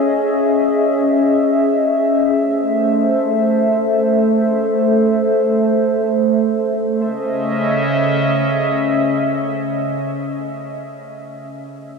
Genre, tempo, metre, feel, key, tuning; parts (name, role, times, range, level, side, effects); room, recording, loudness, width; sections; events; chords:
IDM; free time; C# harmonic minor; A4 = 441 Hz
warbly tape-like pad; sustained chords; 0.0-10.1 s; C#3 to E5; -15 LUFS; equal; chorus, built-in reverb
wet huge ambient reverb, RT60 9.3 s; dreamy mix soaked in reverb; -14 LUFS; side -4 dB against mid
0.0-7.0 A section; 7.0-9.4 B section
filter sweep on ambient pad 0.0-7.0
0.0 C#madd9; 2.4 Am; 7.0 C#madd9